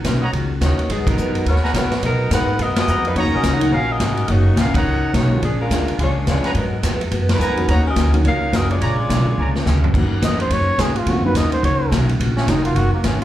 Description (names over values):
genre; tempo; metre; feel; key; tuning
jazz, big band swing; 212 BPM; 4/4; swing 61% on 8ths; Eb minor; A4 = 440 Hz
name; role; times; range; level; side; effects
upright bass; bass; 0.0-13.2 s; Eb1 to Cb3; -19 LUFS; equal; none
swinging big-band drum kit; drums; 0.0-13.2 s; crash cymbal, hi-hat, kick drum, ride cymbal, snare drum, toms; -23 LUFS; right 1 dB; none
picked steel-string acoustic guitar; accompaniment; 0.1-13.2 s; Bb2 to Bb4; -27 LUFS; left 4 dB; slapback echo
clear trumpet section; stabs; 0.2-9.5 s; Cb5 to Bb5; -26 LUFS; right 2 dB; slapback echo
mellow saxophone section; melody; 0.6-9.6 s; F3 to Gb5; -22 LUFS; left 1 dB; slapback echo
warm grand piano; accompaniment; 1.1-12.9 s; C#3 to Bb4; -24 LUFS; right 1 dB; slapback echo
mellow trumpet; melody; 10.2-13.2 s; Bb3 to Eb5; -22 LUFS; right 1 dB; slapback echo
room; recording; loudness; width
light reverb; live gig heard through the venue's PA, club reverb; -16 LUFS; side -13 dB against mid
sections
0.0-9.9 A section; 9.9-13.2 B section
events
band accent 1.0, 2.7, 4.7, 7.3; drum fill 9.4-9.9; trumpet solo 9.9-13.2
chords
0.0 Ebm7; 0.9 Abm9; 3.2 Ebm7; 5.4 Bb7#9; 6.6 Abm9; 7.7 Ebm7; 8.8 Bb7#9; 9.9 Ebm7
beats
0.05 0.33 0.61 | 0.90 1.18 1.46 1.74 | 2.03 2.31 2.59 2.88 | 3.16 3.44 3.72 4.01 | 4.29 4.57 4.86 5.14 | 5.42 5.70 5.99 6.27 | 6.55 6.83 7.12 7.40 | 7.68 7.96 8.25 8.53 | 8.81 9.09 9.38 9.66 | 9.94 10.22 10.51 10.79 | 11.07 11.35 11.63 11.92 | 12.20 12.48 12.76 13.04